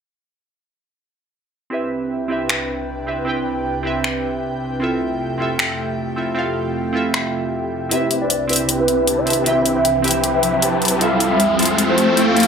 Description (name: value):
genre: future bass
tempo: 155 BPM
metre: 4/4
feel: swing 54% on 16ths, half-time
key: C major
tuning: A4 = 440 Hz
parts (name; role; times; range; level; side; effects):
- glassy digital keys; accompaniment; 1.7-12.5 s; C4 to G5; -23 LUFS; right 2 dB; chorus, low-pass filter, analog delay
- airy breathy pad; sustained chords; 1.9-12.5 s; C2 to G5; -26 LUFS; left 1 dB; chorus
- trap drum kit; drums; 2.5-12.5 s; finger snaps, hi-hat; -20 LUFS; left 1 dB; overdrive, studio ambience
- soft octave-layered synth lead; melody; 7.9-12.5 s; B4 to F5; -20 LUFS; equal; chorus, phaser, analog delay
- supersaw chords; riff; 7.9-12.5 s; C4 to A5; -20 LUFS; equal; phaser, low-pass filter
- riser; sound effects; 9.5-12.5 s; none; -21 LUFS; left 1 dB; none
room: wet plate reverb, RT60 0.9 s, digital ambience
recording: dreamy mix soaked in reverb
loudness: -17 LUFS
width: side -6 dB against mid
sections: 1.7-7.9 A section; 7.9-12.5 B section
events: filter sweep on synth keys 1.7-7.9; build-up 7.9-12.5; filter sweep on supersaw synth 7.9-12.5; filter sweep on analog synth pad 7.9-12.5; riser 9.5-12.5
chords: 1.7 Cmaj7; 4.8 Fmaj7; 7.9 Cmaj7; 11.0 Fmaj7